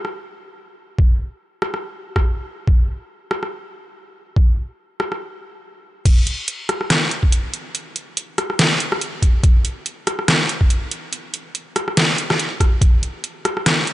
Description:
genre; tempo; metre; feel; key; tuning
dubstep; 142 BPM; 4/4; swing 56% on 16ths, half-time; none; none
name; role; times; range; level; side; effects
dubstep drum kit; drums; 0.0-13.9 s; crash cymbal, hi-hat, rim click, snare drum; -19 LUFS; equal; none
electronic kick drum; drums; 1.0-12.9 s; none; -14 LUFS; equal; none
room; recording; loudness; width
little or no reverb; nothing above 10.3 kHz; -17 LUFS; side -15 dB against mid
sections
0.0-6.1 A section; 6.1-13.9 B section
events
stop 5.2-6.1; drop 6.1-13.9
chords
none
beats
0.14 0.56 | 0.98 1.41 1.83 2.25 | 2.67 3.10 3.52 3.94 | 4.37 4.79 5.21 5.63 | 6.05 6.48 6.90 7.32 | 7.75 8.17 8.59 9.01 | 9.44 9.86 10.28 10.70 | 11.13 11.55 11.97 12.39 | 12.82 13.24 13.66

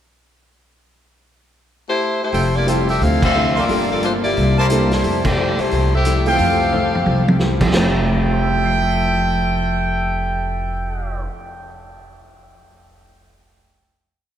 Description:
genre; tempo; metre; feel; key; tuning
jazz, big band swing; 178 BPM; 4/4; swing 62% on 8ths; F major; A4 = 440 Hz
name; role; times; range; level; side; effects
warm saxophone section; melody; 1.9-7.4 s; A3 to F5; -20 LUFS; left 2 dB; none
archtop guitar, miked and amplified; accompaniment; 2.3-11.4 s; C3 to A4; -25 LUFS; left 2 dB; none
clear trumpet section; stabs; 2.3-11.2 s; E4 to C6; -24 LUFS; right 1 dB; none
upright bass; bass; 2.3-11.3 s; F1 to F2; -20 LUFS; equal; none
vintage drum kit; drums; 2.3-7.8 s; crash cymbal, hi-hat, kick drum, snare drum, toms; -23 LUFS; equal; none
clear baby grand piano; accompaniment; 2.7-12.2 s; F2 to C7; -26 LUFS; right 3 dB; none
room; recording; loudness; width
wet cathedral reverb, RT60 4.9 s; recorded in a church or concert hall, faint mains hum; -15 LUFS; side -10 dB against mid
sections
1.0-2.3 pickup bar; 2.3-7.7 A section; 7.7-10.4 final chord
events
band accent 3.2, 5.2; drum fill 6.7-7.4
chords
1.0 Am7; 2.3 Fmaj9; 3.0 Dm9; 3.7 Gm9; 4.4 C13; 5.0 Fmaj9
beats
| 0.98 1.32 1.66 2.00 | 2.34 2.68 3.02 3.35 | 3.69 4.03 4.37 4.71 | 5.04 5.38 5.72 6.05 | 6.39 6.73 7.07 7.40 | 7.74 8.07 8.41 8.75 | 9.09 9.43 9.77 10.10

